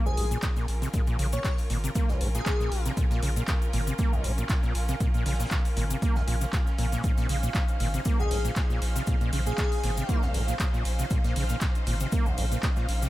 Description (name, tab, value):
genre	acid house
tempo	118 BPM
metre	4/4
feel	swing 54% on 16ths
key	Bb minor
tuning	A4 = 440 Hz
part	bright studio string section	sustained chords	0.0-13.1 s	Db4 to C5	-39 LUFS	equal	vintage 12-bit sampler grit, sidechain pumping
part	overdriven acid bass	riff	0.0-13.1 s	Bb1 to Bb3	-32 LUFS	equal	distortion, analog chorus, cassette tape, tape echo
part	granular cloud pad	texture	0.3-13.1 s	F5	-39 LUFS	right 2 dB	built-in reverb, sidechain pumping
part	airy dreamy lead	melody	0.1-2.9, 8.2-10.2 s	Ab4 to Db5	-36 LUFS	left 2 dB	chorus, tape echo
part	cabasa	percussion	0.1-13.1 s	none	-42 LUFS	left 6 dB	none
part	round analog bass	bass	0.2-13.1 s	Ab1 to Bb1	-29 LUFS	equal	sidechain pumping
part	booming analog drum machine	drums	0.2-13.1 s	handclaps, hi-hat, ride cymbal	-36 LUFS	equal	none
part	raw garage drum kit	drums	0.2-13.1 s	hi-hat, shaker, snare drum	-47 LUFS	equal	none
part	electronic kick drum	drums	0.4-12.7 s	none	-27 LUFS	equal	none
room	small room ambience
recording	none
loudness	-24 LUFS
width	side -16 dB against mid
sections	0.0-13.1 A section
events	none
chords	0.0 Bbm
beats	0.43 | 0.94 1.45 1.95 2.46 | 2.97 3.48 3.99 4.50 | 5.00 5.51 6.02 6.53 | 7.04 7.55 8.06 8.56 | 9.07 9.58 10.09 10.60 | 11.11 11.62 12.12 12.63